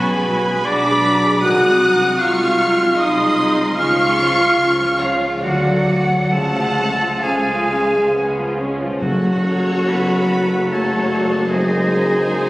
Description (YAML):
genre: classical, slow romantic movement for symphony orchestra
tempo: 64-80 BPM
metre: 3/4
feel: rubato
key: F# minor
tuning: A4 = 438 Hz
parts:
  - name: warm chamber violin section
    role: melody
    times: 0.0-12.5 s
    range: B#4 to D#6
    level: -24 LUFS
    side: equal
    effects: none
  - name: bright small flute group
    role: second line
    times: 0.0-12.5 s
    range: B#4 to F#6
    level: -21 LUFS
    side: equal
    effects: none
  - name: clear oboe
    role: second line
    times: 0.0-12.5 s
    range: E#4 to F#5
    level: -26 LUFS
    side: right 1 dB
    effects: none
  - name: warm clarinet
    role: second line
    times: 0.0-12.5 s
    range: E#4 to F#5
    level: -26 LUFS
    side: equal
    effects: none
  - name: warm symphonic violin section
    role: second line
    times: 0.0-12.5 s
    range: E#5 to F#6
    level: -32 LUFS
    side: equal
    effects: none
  - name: warm studio viola section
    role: accompaniment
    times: 0.0-12.5 s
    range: E#3 to A4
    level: -24 LUFS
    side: equal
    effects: none
  - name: dark French horn section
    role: sustained chords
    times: 0.0-12.5 s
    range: E#3 to F#4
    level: -21 LUFS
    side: equal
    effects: none
  - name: concert harp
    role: arpeggios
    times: 0.0-12.5 s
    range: F#2 to C#6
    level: -28 LUFS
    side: left 1 dB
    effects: none
  - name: warm chamber cello section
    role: bass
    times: 0.0-12.5 s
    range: F#2 to F#4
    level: -28 LUFS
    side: right 1 dB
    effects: none
  - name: warm chamber double bass section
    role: bass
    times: 0.0-12.5 s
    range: F#1 to D2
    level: -28 LUFS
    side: right 1 dB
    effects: none
  - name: warm trombone section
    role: sustained chords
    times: 1.4-6.7 s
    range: C#3 to G#3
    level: -31 LUFS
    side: right 1 dB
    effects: none
  - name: mellow bassoon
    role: accompaniment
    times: 7.2-12.5 s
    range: D#3 to C#4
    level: -24 LUFS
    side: equal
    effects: none
  - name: clear tuba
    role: bass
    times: 9.0-12.5 s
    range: F#1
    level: -23 LUFS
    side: equal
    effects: none
  - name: timpani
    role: percussion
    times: 9.0-10.3 s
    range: F#2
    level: -26 LUFS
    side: equal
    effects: none
room: wet concert hall reverb, RT60 2.5 s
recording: recorded on a phone in the room, studio reverb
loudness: -14 LUFS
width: side -18 dB against mid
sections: 0.0-9.0 A section; 9.0-12.5 B section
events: none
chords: 0.0 G#m7b5/B; 1.4 G#7/B#; 3.8 C#; 5.4 D; 6.3 C#; 9.0 F#m; 11.5 G#7/F#